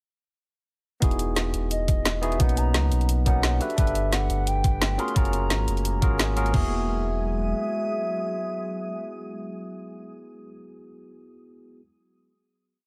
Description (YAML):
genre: liquid drum and bass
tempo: 174 BPM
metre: 4/4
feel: swing 54% on 16ths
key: E lydian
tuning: A4 = 440 Hz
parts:
  - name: bright tine electric piano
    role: accompaniment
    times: 1.0-11.8 s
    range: F#3 to B4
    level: -34 LUFS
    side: equal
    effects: tape echo
  - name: warm sub bass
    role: bass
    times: 1.0-7.5 s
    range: E1 to C#2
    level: -28 LUFS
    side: equal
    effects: none
  - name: drum and bass drum kit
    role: drums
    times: 1.0-6.6 s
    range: crash cymbal, kick drum, toms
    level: -25 LUFS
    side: equal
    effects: overdrive
  - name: drum and bass drum kit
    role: drums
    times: 1.0-6.5 s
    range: hi-hat, snare drum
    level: -30 LUFS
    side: equal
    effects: overdrive
  - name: hollow clarinet-like synth lead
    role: melody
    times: 1.7-10.1 s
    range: D#5 to C6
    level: -34 LUFS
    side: equal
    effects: chorus, delay
  - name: glassy FM pad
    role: sustained chords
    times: 4.2-10.1 s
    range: F#3 to D#6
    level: -38 LUFS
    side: equal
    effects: ensemble chorus, built-in reverb, sidechain pumping
room: light reverb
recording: none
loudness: -25 LUFS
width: mono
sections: 1.0-6.5 drop; 6.5-9.3 final chord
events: drop 1.0-6.5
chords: 1.0 Emaj9; 2.4 Bmaj9; 3.6 Gmaj9; 5.0 F#maj9; 6.5 Emaj9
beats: | 1.02 1.37 1.71 2.06 | 2.40 2.75 3.09 3.44 | 3.78 4.12 4.47 4.81 | 5.16 5.50 5.85 6.19 | 6.54 6.88 7.23 7.57 | 7.92 8.26 8.61 8.95